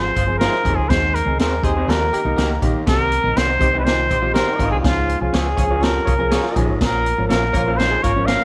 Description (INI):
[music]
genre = uptempo 1960s-style soul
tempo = 122 BPM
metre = 4/4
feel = straight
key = Ab major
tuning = A4 = 440 Hz
[part]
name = breathy trumpet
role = melody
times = 0.0-8.4 s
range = F4 to F5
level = -22 LUFS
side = equal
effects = none
[part]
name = warm horn section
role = second line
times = 0.0-8.4 s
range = Bb3 to Db5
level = -31 LUFS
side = equal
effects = none
[part]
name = warm upright piano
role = accompaniment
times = 0.0-8.4 s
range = Eb3 to Bb4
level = -28 LUFS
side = equal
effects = none
[part]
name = warm baritone saxophone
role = riff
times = 0.0-8.0 s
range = Eb2 to C3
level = -31 LUFS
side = equal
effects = none
[part]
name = vintage muted fingered electric bass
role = bass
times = 0.0-8.3 s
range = F1 to Eb2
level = -25 LUFS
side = equal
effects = none
[part]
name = swinging big-band drum kit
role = drums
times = 0.2-8.4 s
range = hi-hat, kick drum, snare drum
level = -24 LUFS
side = equal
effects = none
[part]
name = electric guitar through a small old amp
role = stabs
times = 0.4-8.4 s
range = Ab3 to Db5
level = -30 LUFS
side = equal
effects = spring reverb
[part]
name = hollow-body jazz guitar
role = riff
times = 2.0-8.4 s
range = Db4 to Db5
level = -30 LUFS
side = equal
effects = none
[sound]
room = light reverb, studio reverb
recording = none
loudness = -18 LUFS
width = mono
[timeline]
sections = 0.0-8.4 A section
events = none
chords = 0.0 Ab6; 0.9 Ab; 1.9 Eb; 2.9 Cm; 4.8 Db; 6.8 Bbm